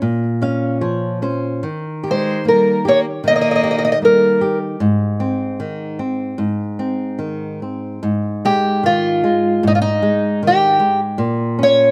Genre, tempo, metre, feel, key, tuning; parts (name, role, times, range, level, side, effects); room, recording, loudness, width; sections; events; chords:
fado-style ballad; 76 BPM; 2/4; rubato; Ab major; A4 = 440 Hz
flamenco guitar; accompaniment; 0.0-11.9 s; Ab2 to F5; -22 LUFS; equal
fingerpicked twelve-string acoustic guitar; melody; 2.1-4.6, 8.5-11.9 s; Eb4 to Eb5; -16 LUFS; equal
rich cello; second line; 2.1-4.6 s; G3 to Bb3; -25 LUFS; equal
light reverb; recorded outdoors, with no room sound; -17 LUFS; mono
0.0-8.0 A section; 8.0-11.9 A section
nylon-string guitar fill 0.0-1.6
0.0 Bbm; 1.6 Eb; 4.8 Ab; 8.0 Ab5; 11.2 Bbm